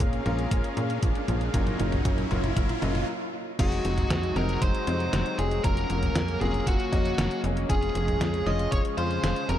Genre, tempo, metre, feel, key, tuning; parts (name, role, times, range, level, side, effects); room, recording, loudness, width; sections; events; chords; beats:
synthwave; 117 BPM; 4/4; straight; A4 = 439 Hz
lush unison pad; sustained chords; 0.0-9.6 s; C3 to F5; -34 LUFS; equal; chorus, vintage 12-bit sampler grit, sidechain pumping
bright electric grand piano; stabs; 0.0-9.6 s; Gb3 to F5; -33 LUFS; left 4 dB; tape echo
tight sequencer bass; bass; 0.0-9.6 s; F1 to Bb2; -28 LUFS; equal; sidechain pumping
detuned 8-bit digital drum machine; drums; 0.0-9.6 s; crash cymbal, hi-hat, snare drum, toms; -32 LUFS; equal
electronic kick drum; drums; 0.0-8.8 s; -26 LUFS; equal
riser; sound effects; 0.0-3.1 s; -35 LUFS; right 2 dB
high-gain lead guitar; melody; 3.6-9.6 s; Gb4 to Eb5; -31 LUFS; equal; distortion, tape echo
soft synth bell; second line; 3.6-9.6 s; Gb5 to Eb6; -36 LUFS; equal; chorus
light reverb, digital ambience; dark, warm production; -24 LUFS; side -11 dB against mid
0.0-3.6 A section; 3.6-9.6 B section
drum fill 0.0-3.1; riser 0.0-3.1; stop 3.1-3.6
0.0 Bbm7; 1.5 Gbmaj7; 3.6 Ab7/F; 5.6 Gbmaj7/F; 7.7 Db/F
0.00 0.52 1.03 | 1.54 2.05 2.57 3.08 | 3.59 4.11 4.62 5.13 | 5.64 6.16 6.67 7.18 | 7.70 8.21 8.72 9.23